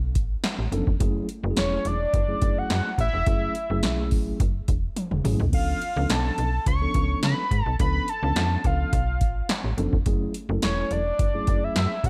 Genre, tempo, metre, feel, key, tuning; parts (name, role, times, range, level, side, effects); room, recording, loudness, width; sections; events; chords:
early-eighties boogie funk; 106 BPM; 4/4; straight; F# minor; A4 = 442 Hz
slap-like FM bass; bass; 0.0-12.1 s; E1 to C#3; -29 LUFS; equal
electro analog drum machine; drums; 0.2-12.1 s; crash cymbal, handclaps, hi-hat, kick drum, snare drum, toms; -28 LUFS; equal; gated reverb
mellow tine electric piano; accompaniment; 0.7-11.9 s; D3 to A4; -33 LUFS; equal
fat analog lead; melody; 1.6-12.1 s; C#5 to C#6; -30 LUFS; equal; slapback echo
digital ambience; -24 LUFS; mono
0.0-12.1 A section
drum fill 5.0-5.5
0.0 C#7b9b13; 1.0 F#m9; 5.5 C#7b9b13; 10.1 F#m9